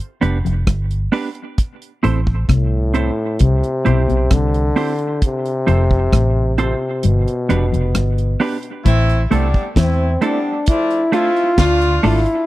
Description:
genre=roots reggae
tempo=66 BPM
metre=4/4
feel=straight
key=A minor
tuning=A4 = 440 Hz
part: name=deep reggae drum kit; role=drums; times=0.0-12.5 s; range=hi-hat, kick drum, rim click, snare drum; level=-16 LUFS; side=equal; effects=none
part: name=clean electric guitar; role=accompaniment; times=0.2-12.2 s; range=A3 to C5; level=-21 LUFS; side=right 4 dB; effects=spring reverb, tape echo
part: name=clean electric guitar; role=riff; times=0.2-12.2 s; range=F2 to E3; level=-21 LUFS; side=left 4 dB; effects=none
part: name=vintage muted fingered electric bass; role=bass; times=0.2-12.2 s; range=F1 to E2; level=-17 LUFS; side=equal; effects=none
part: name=breathy trombone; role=melody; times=2.5-12.5 s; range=A2 to F4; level=-19 LUFS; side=left 1 dB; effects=tape echo
part: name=mellow horn section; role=second line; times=8.8-12.2 s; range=F3 to F4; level=-22 LUFS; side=equal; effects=tape echo
room=little or no reverb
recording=dry, close 1970s-style studio recording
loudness=-14 LUFS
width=side -16 dB against mid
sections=0.0-8.9 A section; 8.9-12.5 B section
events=kick muted 7.0-8.9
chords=0.0 G; 1.6 Am; 3.4 C; 5.2 F; 7.0 G; 8.9 Am; 10.7 Dm

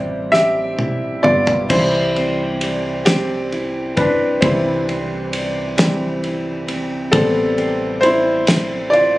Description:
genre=six-eight pop ballad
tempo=44 BPM (dotted quarters)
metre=6/8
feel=straight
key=C major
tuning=A4 = 440 Hz
part: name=warm upright piano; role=accompaniment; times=0.0-9.2 s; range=C3 to E5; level=-17 LUFS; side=equal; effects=none
part: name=fingerpicked steel-string acoustic guitar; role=arpeggios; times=0.0-9.2 s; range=G3 to E4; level=-24 LUFS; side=right 2 dB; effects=tape echo
part: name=solid FM bass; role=bass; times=0.0-9.2 s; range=G1 to C2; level=-28 LUFS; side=equal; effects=none
part: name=damped 70s drum kit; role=drums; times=0.3-9.1 s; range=crash cymbal, kick drum, ride cymbal, snare drum, toms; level=-22 LUFS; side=equal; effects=none
room=small room ambience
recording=recorded on a phone in the room, club ambience, compression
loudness=-15 LUFS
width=side -18 dB against mid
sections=0.0-1.7 A section; 1.7-9.2 B section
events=upright piano solo 0.0-1.7, 1.7-9.2; drum fill 0.3-1.7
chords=0.0 Am7; 1.7 C; 7.1 Am7

